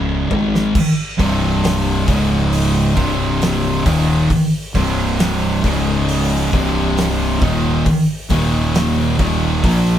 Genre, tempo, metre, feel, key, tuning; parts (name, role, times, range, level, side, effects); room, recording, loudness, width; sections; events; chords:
stoner and doom metal; 68 BPM; 4/4; straight; C phrygian; A4 = 441 Hz
thick fuzz guitar; riff; 0.0-10.0 s; C2 to Bb3; -20 LUFS; left 6 dB; distortion
thick fuzz guitar; riff; 0.0-10.0 s; C2 to Bb3; -20 LUFS; right 5 dB; distortion
fuzz fingered electric bass; bass; 0.0-10.0 s; C1 to Bb1; -22 LUFS; equal; overdrive
oversized low-tuned drum kit; drums; 0.3-9.8 s; crash cymbal, hi-hat, kick drum, snare drum, toms; -21 LUFS; equal
distorted electric guitar; riff; 1.2-10.0 s; C2 to Bb3; -22 LUFS; equal; overdrive
light reverb; band playing live in one room; -14 LUFS; side -10 dB against mid
0.8-10.0 A section
drum fill 0.0-0.8
0.0 Dbsus2; 0.8 C5; 2.1 Db5; 3.0 Cm; 5.6 Db5; 6.5 Cm; 8.3 Eb5